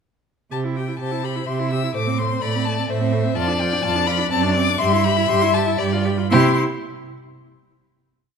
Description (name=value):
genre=quick classical-period movement for string quartet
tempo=117-130 BPM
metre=3/4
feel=rubato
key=C major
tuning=A4 = 440 Hz
part: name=rich violin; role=melody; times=0.5-6.6 s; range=E5 to E6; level=-24 LUFS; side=left 8 dB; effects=none
part: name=rich viola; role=accompaniment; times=0.5-6.6 s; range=A3 to G4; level=-25 LUFS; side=right 2 dB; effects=none
part: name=rich cello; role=bass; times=0.5-6.6 s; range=F2 to C3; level=-22 LUFS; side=right 5 dB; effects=none
part: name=rich violin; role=second line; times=1.0-6.6 s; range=G4 to E5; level=-24 LUFS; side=left 5 dB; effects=none
room=moderate recital hall reverb, RT60 1.7 s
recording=none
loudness=-18 LUFS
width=side -6 dB against mid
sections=0.5-6.3 A section; 6.3-7.8 final chord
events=none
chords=0.5 C; 2.0 Am; 3.4 Dm/F; 4.3 D7/F#; 4.8 Am9/G; 5.8 G7; 6.3 C